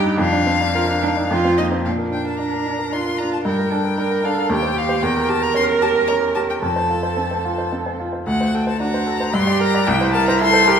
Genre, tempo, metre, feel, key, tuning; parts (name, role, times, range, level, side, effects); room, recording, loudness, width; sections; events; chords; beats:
quick classical-period movement for piano trio; 112 BPM; 3/4; straight; Bb major; A4 = 440 Hz
rich cello; second line; 0.0-10.8 s; D4 to Bb4; -21 LUFS; right 5 dB
clear baby grand piano; accompaniment; 0.0-10.8 s; C2 to D5; -20 LUFS; equal
rich violin; melody; 0.2-10.8 s; Eb5 to C6; -22 LUFS; left 6 dB
wet recital hall reverb, RT60 1.7 s; recorded in a church or concert hall; -17 LUFS; side -7 dB against mid
0.0-1.9 A section; 1.9-10.8 B section
0.2 Bb/F; 1.3 F5; 1.9 Bb; 3.5 Gm; 4.5 Cm/Eb; 5.0 Edim7; 6.6 F; 8.3 D7; 9.4 Gm; 9.9 C7
| 0.19 0.75 1.30 | 1.85 2.39 2.93 | 3.45 3.98 4.50 | 5.02 5.55 6.08 | 6.62 7.17 7.72 | 8.27 8.81 9.35 | 9.88 10.41